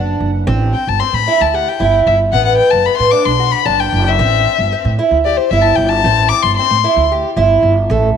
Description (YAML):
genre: progressive instrumental, band music in an uneven meter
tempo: 226 BPM (eighths)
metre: 7/8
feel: straight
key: A dorian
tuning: A4 = 440 Hz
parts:
  - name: fingerpicked twelve-string acoustic guitar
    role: arpeggios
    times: 0.0-8.1 s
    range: A3 to G4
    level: -15 LUFS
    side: right 2 dB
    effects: none
  - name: upright bass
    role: bass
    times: 0.0-8.2 s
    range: F#1 to A2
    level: -17 LUFS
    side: right 2 dB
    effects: none
  - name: dark violin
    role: melody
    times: 0.7-7.1 s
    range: C5 to D6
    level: -15 LUFS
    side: left 12 dB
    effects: none
room: moderate plate reverb, RT60 3.6 s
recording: none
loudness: -11 LUFS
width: side -7 dB against mid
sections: 0.0-7.9 A section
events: violin solo 0.0-7.9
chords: 0.5 Am7; 2.3 Gmaj9/F#; 4.2 Am7